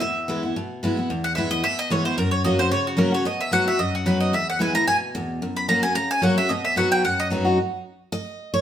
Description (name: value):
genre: bluegrass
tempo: 222 BPM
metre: 4/4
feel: swing 53% on 8ths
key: B major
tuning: A4 = 440 Hz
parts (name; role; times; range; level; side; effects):
- mandolin; melody; 0.0-7.3 s; F#4 to B5; -23 LUFS; right 1 dB; none
- picked steel-string acoustic guitar; accompaniment; 0.0-8.6 s; E2 to D#5; -22 LUFS; left 1 dB; none
room: wet stone room reverb, RT60 0.9 s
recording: band playing live in one room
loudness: -20 LUFS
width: side -10 dB against mid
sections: 0.0-7.6 A section; 7.6-8.6 B section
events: steel-string acoustic guitar solo 7.6-8.6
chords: 0.0 E; 2.2 F#; 3.3 B; 4.3 E; 5.4 F#; 6.5 B; 7.6 N.C.